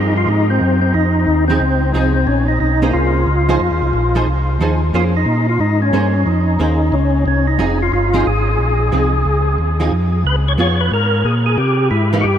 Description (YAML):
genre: jazz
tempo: 180 BPM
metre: 4/4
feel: swing 64% on 8ths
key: F minor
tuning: A4 = 442 Hz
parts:
  - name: percussive tonewheel organ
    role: melody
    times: 0.0-12.4 s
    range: C4 to Db5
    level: -17 LUFS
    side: left 1 dB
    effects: slow rotary speaker, chorus vibrato, analog delay
  - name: archtop guitar, miked and amplified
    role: accompaniment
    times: 0.0-12.2 s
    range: E3 to C5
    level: -22 LUFS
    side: right 3 dB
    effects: ensemble chorus
  - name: mellow tonewheel organ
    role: bass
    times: 0.0-12.4 s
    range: F1 to C3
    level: -16 LUFS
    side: equal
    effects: slow rotary speaker
room: moderate huge ambient reverb, RT60 7.7 s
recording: dreamy mix soaked in reverb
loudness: -13 LUFS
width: side -9 dB against mid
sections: 0.0-12.4 A section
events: none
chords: 0.0 Fm7; 2.3 Bbm9; 3.6 Fm7; 4.9 Bbm9; 7.6 Fm7; 10.3 Db7; 11.6 C7#9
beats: 0.28 0.61 | 0.94 1.27 1.61 1.94 | 2.27 2.60 2.94 3.27 | 3.60 3.93 4.27 4.60 | 4.93 5.26 5.60 5.93 | 6.26 6.60 6.93 7.26 | 7.59 7.93 8.26 8.59 | 8.92 9.26 9.59 9.92 | 10.25 10.59 10.92 11.25 | 11.59 11.92 12.25